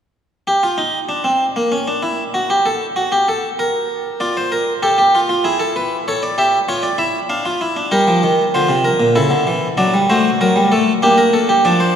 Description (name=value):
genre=classical, baroque-style 3-part fugue for harpsichord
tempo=97 BPM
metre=3/4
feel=straight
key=G minor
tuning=A4 = 441 Hz
part: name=harpsichord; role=solo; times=0.5-12.0 s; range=Bb2 to F5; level=-14 LUFS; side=equal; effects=none
room=wet cathedral reverb, RT60 4.5 s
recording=recorded in a church or concert hall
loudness=-14 LUFS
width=side -8 dB against mid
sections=0.5-12.0 A section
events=none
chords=0.5 N.C.; 4.2 Dm/F; 5.4 E; 6.1 A7; 7.3 Dm; 7.9 Gm; 9.2 A/C#; 9.8 D7/F#; 11.0 Gm/Bb